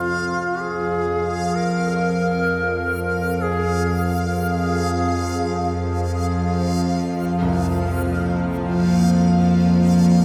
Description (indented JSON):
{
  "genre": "dark ambient drone",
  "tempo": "free time",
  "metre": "none",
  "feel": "none",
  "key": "F minor",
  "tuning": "A4 = 442 Hz",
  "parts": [
    { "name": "bright reedy long shakuhachi", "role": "melody", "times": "0.0-6.2 s", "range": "F4 to Bb4", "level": "-27 LUFS", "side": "equal", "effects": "diffuse ambient delay" },
    { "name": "clear grand piano", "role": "arpeggios", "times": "0.0-10.2 s", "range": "C2 to Bb3", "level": "-35 LUFS", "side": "equal", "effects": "diffuse ambient delay" },
    { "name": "bowed-like drone", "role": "drone", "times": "0.0-10.2 s", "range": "F2 to F3", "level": "-23 LUFS", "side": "equal", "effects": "built-in reverb" },
    { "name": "backwards swelling texture", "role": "texture", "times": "0.0-10.2 s", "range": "F5", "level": "-31 LUFS", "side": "equal", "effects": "built-in reverb" },
    { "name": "dark analog pad", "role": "sustained chords", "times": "8.1-10.2 s", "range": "F3 to F5", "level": "-22 LUFS", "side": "equal", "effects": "chorus" }
  ],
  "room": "wet lush hall reverb, RT60 3.0 s",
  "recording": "dreamy mix soaked in reverb",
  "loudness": "-20 LUFS",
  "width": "mono",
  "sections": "0.0-10.2 A section",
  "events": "none",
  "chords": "0.0 Fm; 7.2 Ebsus2"
}